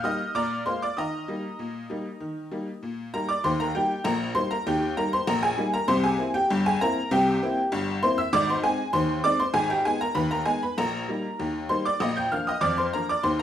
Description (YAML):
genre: ragtime piano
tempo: 98 BPM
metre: 2/4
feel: straight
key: Eb major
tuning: A4 = 440 Hz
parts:
  - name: tack piano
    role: solo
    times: 0.0-13.4 s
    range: G1 to G6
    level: -23 LUFS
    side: equal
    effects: none
room: wet large studio reverb, RT60 0.8 s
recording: band playing live in one room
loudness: -23 LUFS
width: side -10 dB against mid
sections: 0.0-3.4 A section; 3.4-13.4 B section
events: none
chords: 0.4 Bb7; 1.0 Eb; 5.9 C7; 8.3 Ab; 9.5 Abm; 10.8 Eb/Bb; 12.0 Bb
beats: 0.35 | 0.97 1.59 | 2.21 2.82 | 3.44 4.05 | 4.67 5.28 | 5.89 6.50 | 7.11 7.72 | 8.32 8.93 | 9.54 10.16 | 10.77 11.39 | 12.01 12.62 | 13.24